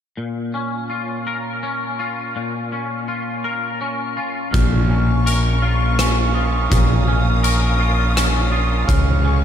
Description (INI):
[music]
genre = post-rock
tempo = 83 BPM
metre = 3/4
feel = straight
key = Bb minor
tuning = A4 = 441 Hz
[part]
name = twangy electric guitar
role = arpeggios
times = 0.2-9.4 s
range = Bb2 to Bb4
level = -23 LUFS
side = left 2 dB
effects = ensemble chorus, ping-pong delay
[part]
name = rich symphonic string section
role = sustained chords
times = 4.5-9.4 s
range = Db4 to Eb6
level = -27 LUFS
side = equal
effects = none
[part]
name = glockenspiel with rubber mallets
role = arpeggios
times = 4.5-9.4 s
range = Db6 to F6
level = -26 LUFS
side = right 5 dB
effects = ping-pong delay
[part]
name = fuzz fingered electric bass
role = bass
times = 4.5-9.4 s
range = Bb1 to Db2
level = -17 LUFS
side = equal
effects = overdrive
[part]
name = big rock drum kit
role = drums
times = 4.5-9.1 s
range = hi-hat, kick drum, rim click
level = -21 LUFS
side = equal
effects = none
[sound]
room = light reverb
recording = none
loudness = -17 LUFS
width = side -9 dB against mid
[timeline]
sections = 0.2-4.5 A section; 4.5-9.4 B section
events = none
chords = 0.2 Bbm; 8.9 Db